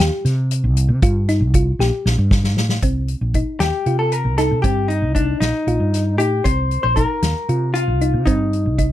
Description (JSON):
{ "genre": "progressive instrumental, band music in an uneven meter", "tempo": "232 BPM (eighths)", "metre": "7/8", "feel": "straight", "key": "C dorian", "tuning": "A4 = 441 Hz", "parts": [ { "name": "thumb-piano-like synth pluck", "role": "arpeggios", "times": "0.0-8.9 s", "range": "C4 to G4", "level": "-24 LUFS", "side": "right 1 dB", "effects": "chorus, phaser" }, { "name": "woody fretless electric bass", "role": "bass", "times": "0.0-8.9 s", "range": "Bb1 to C3", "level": "-18 LUFS", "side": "equal", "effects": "none" }, { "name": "soft-mallet drum kit", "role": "drums", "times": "0.0-8.9 s", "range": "hi-hat, kick drum, snare drum", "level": "-20 LUFS", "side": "equal", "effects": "none" }, { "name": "vintage hollow-body jazz guitar", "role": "melody", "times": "3.6-8.9 s", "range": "D4 to C5", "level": "-20 LUFS", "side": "left 3 dB", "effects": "none" } ], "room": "little or no reverb", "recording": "dry, close 1970s-style studio recording, faint mains hum", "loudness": "-16 LUFS", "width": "side -13 dB against mid", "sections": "0.0-2.8 A section; 2.8-8.9 B section", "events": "drum fill 1.8-2.8", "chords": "0.0 C5; 2.8 Cm", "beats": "0.25 0.51 0.76 | 1.02 1.28 1.54 1.80 2.05 2.31 2.57 | 2.83 3.09 3.35 3.60 3.86 4.12 4.38 | 4.64 4.90 5.16 5.41 5.67 5.93 6.19 | 6.45 6.71 6.97 7.23 7.49 7.75 8.00 | 8.26 8.52 8.78" }